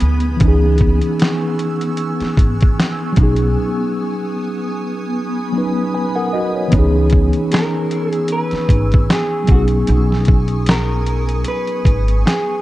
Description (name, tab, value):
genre	lo-fi hip hop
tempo	76 BPM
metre	4/4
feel	swing 56% on 16ths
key	unclear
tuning	A4 = 437 Hz
part	mellow tine electric piano	accompaniment	0.0-12.6 s	E3 to G#5	-19 LUFS	equal	medium stereo tremolo, cassette tape, low-pass filter
part	granular cloud pad	sustained chords	0.0-12.6 s	B3 to E6	-26 LUFS	equal	built-in reverb, phaser, low-pass filter
part	upright bass	bass	0.0-12.2 s	G#1 to D2	-16 LUFS	equal	none
part	boom bap sampler-style drum kit	drums	0.0-12.5 s	hi-hat, kick drum, snare drum	-15 LUFS	equal	vintage 12-bit sampler grit
part	electric guitar through a small old amp	melody	7.5-12.6 s	F#4 to B4	-22 LUFS	equal	low-pass filter, tape echo
room	light reverb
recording	echo-heavy mix, cassette tape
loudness	-14 LUFS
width	side -16 dB against mid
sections	0.0-12.6 A section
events	break 3.6-6.7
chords	0.4 C#m7; 3.2 B69; 6.7 C#m7; 9.5 B69